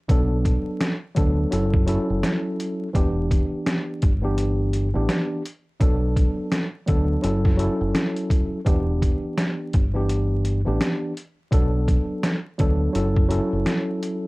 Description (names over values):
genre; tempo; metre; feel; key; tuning
hip hop, boom-bap hip-hop; 84 BPM; 4/4; swing 60% on 16ths; E dorian; A4 = 440 Hz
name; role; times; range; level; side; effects
tine electric piano; accompaniment; 0.1-14.3 s; E3 to A4; -25 LUFS; equal; overdrive, fast stereo tremolo, high-pass filter, low-pass filter, cassette tape
deep dub fingered electric bass; bass; 0.1-13.6 s; E1 to D2; -23 LUFS; equal; tube saturation
trip hop sampler-style drum kit; drums; 0.1-14.2 s; hi-hat, kick drum, snare drum; -22 LUFS; equal; cassette tape
room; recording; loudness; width
little or no reverb; home recording on cassette, vinyl crackle; -20 LUFS; side -23 dB against mid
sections
0.0-14.3 A section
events
none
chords
0.1 Bm7; 1.5 F#m7; 2.9 Em7; 5.8 Bm7; 7.2 F#m7; 8.7 Em7; 11.5 Bm7; 12.9 F#m7